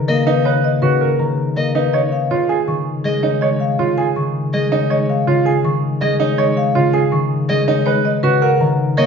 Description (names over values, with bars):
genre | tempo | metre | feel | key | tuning
classical, minimalist pattern music | 162 BPM | 4/4 | straight | unclear | A4 = 440 Hz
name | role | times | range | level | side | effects
concert harp | accompaniment | 0.0-9.1 s | C#3 to A#3 | -18 LUFS | left 2 dB | none
marimba with medium hard mallets | melody | 0.1-9.1 s | G#4 to C#6 | -20 LUFS | left 5 dB | none
rich violin | arpeggios | 0.1-9.1 s | D#5 | -25 LUFS | left 1 dB | none
bright concert grand piano | arpeggios | 0.3-9.1 s | D#4 to D#5 | -19 LUFS | right 7 dB | none
room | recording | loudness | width
wet large studio reverb, RT60 1.2 s | heard from further back in the room, nothing above 7.5 kHz | -14 LUFS | side -6 dB against mid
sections
0.0-9.1 A section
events
none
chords
0.0 Bmaj7; 1.9 C#; 7.9 Bmaj7